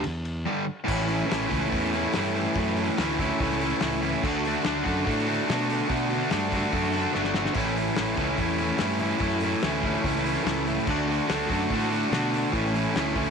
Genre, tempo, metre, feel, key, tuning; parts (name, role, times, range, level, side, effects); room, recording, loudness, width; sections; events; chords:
garage rock duo or trio; 144 BPM; 4/4; straight; A mixolydian; A4 = 440 Hz
fuzz fingered electric bass; bass; 0.0-13.3 s; G1 to B2; -31 LUFS; equal; overdrive, tube saturation
cloth-damped thuddy drum kit; drums; 0.0-13.3 s; crash cymbal, hi-hat, kick drum, ride cymbal, snare drum; -33 LUFS; left 2 dB
cranked stack guitar; riff; 0.5-13.3 s; G2 to F#4; -24 LUFS; equal; overdrive
light reverb, small room ambience; 1960s-style stereo; -23 LUFS; side -6 dB against mid
0.9-13.3 A section
drum fill 7.2-7.6
0.0 G5; 0.9 A; 4.2 D; 7.6 A; 10.9 D; 12.5 A